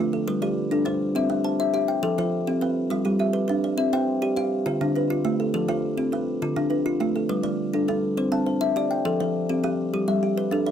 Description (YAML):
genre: southern african traditional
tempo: 137 BPM (dotted quarters)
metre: 12/8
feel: straight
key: G mixolydian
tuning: A4 = 440 Hz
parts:
  - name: kalimba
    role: arpeggios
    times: 0.0-10.7 s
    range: D3 to A5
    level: -23 LUFS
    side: left 2 dB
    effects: none
  - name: kalimba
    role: arpeggios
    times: 0.0-10.7 s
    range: D3 to A5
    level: -27 LUFS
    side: right 4 dB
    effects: none
room: light reverb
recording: close, detailed microphones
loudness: -22 LUFS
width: side -9 dB against mid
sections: 0.0-7.3 A section; 7.3-10.7 B section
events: none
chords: 0.3 G; 1.2 C; 2.0 F; 2.9 G; 3.8 C; 4.7 Dm; 5.5 F; 6.4 Dm; 7.3 G; 8.2 C; 9.1 F; 9.9 G